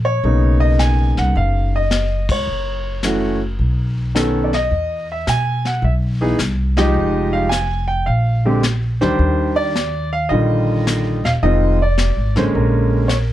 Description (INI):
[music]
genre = jazz piano trio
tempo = 107 BPM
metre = 4/4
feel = swing 68% on 8ths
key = unclear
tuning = A4 = 437 Hz
[part]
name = warm baby grand piano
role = melody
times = 0.0-13.3 s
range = C#3 to Ab5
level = -18 LUFS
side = right 1 dB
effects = none
[part]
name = upright bass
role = bass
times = 0.0-13.3 s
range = Fb1 to B2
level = -18 LUFS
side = equal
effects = none
[part]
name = vintage brush drum kit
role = drums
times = 0.2-13.3 s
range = brushed snare drum, hi-hat, kick drum, ride cymbal, snare drum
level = -25 LUFS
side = left 3 dB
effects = none
[sound]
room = little or no reverb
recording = close, detailed microphones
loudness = -15 LUFS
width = side -13 dB against mid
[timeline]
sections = 0.0-13.3 A section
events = band accent 2.2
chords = 0.2 Bmaj9; 2.5 Gbm7; 3.6 B9; 4.7 Emaj7; 6.9 Fm9; 8.1 Bb69; 9.2 Ebmaj9; 11.4 Fm7; 12.5 Bb7#9